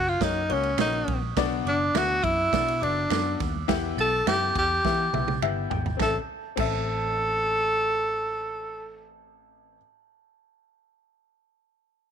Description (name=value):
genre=uptempo 1960s-style soul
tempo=104 BPM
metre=4/4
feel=straight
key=A dorian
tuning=A4 = 440 Hz
part: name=breathy tenor saxophone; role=melody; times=0.0-9.1 s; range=C#4 to A4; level=-25 LUFS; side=equal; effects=none
part: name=glockenspiel with hard plastic mallets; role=second line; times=0.0-9.8 s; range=A5 to A6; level=-37 LUFS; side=right 14 dB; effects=none
part: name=vintage muted picked electric bass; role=bass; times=0.0-9.8 s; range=F#1 to E3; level=-32 LUFS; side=equal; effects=none
part: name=clear baby grand piano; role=accompaniment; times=0.2-9.8 s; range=A1 to G5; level=-31 LUFS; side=left 15 dB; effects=none
part: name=natural country drum kit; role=drums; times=0.2-6.7 s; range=crash cymbal, kick drum, ride cymbal, snare drum, toms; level=-31 LUFS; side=right 5 dB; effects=none
part: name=congas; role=percussion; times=0.2-6.7 s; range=none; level=-40 LUFS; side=right 14 dB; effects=none
part: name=finger snap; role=percussion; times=0.8-6.7 s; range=none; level=-36 LUFS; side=right 16 dB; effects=none
room=small room ambience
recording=1960s-style stereo with parts hard left and right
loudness=-23 LUFS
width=side -8 dB against mid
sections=0.0-6.0 A section; 6.0-8.3 B section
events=drum fill 4.8-6.0; grand piano fill 5.1-6.0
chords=0.0 F#; 1.4 Bm; 3.7 Em; 6.0 Am